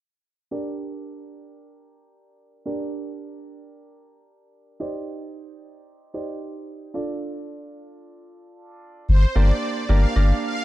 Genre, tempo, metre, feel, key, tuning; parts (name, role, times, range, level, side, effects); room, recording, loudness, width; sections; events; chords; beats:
dance-pop; 112 BPM; 4/4; straight; G minor; A4 = 440 Hz
clear grand piano; accompaniment; 0.5-10.6 s; Bb3 to D5; -31 LUFS; right 3 dB
supersaw pad; melody; 9.1-10.6 s; C5 to F5; -28 LUFS; right 1 dB
saturated sub bass; bass; 9.1-10.3 s; G1; -16 LUFS; equal
studio reverb; dark, warm production, low-pass filter; -22 LUFS; side -16 dB against mid
0.5-9.1 A section; 9.1-10.6 B section
filter sweep 0.5-9.1
0.5 Gm; 4.8 Cmadd9; 6.9 Dm; 9.1 Gm
| 0.52 1.05 1.59 2.12 | 2.66 3.19 3.73 4.27 | 4.80 5.34 5.87 6.41 | 6.95 7.48 8.02 8.55 | 9.09 9.62 10.16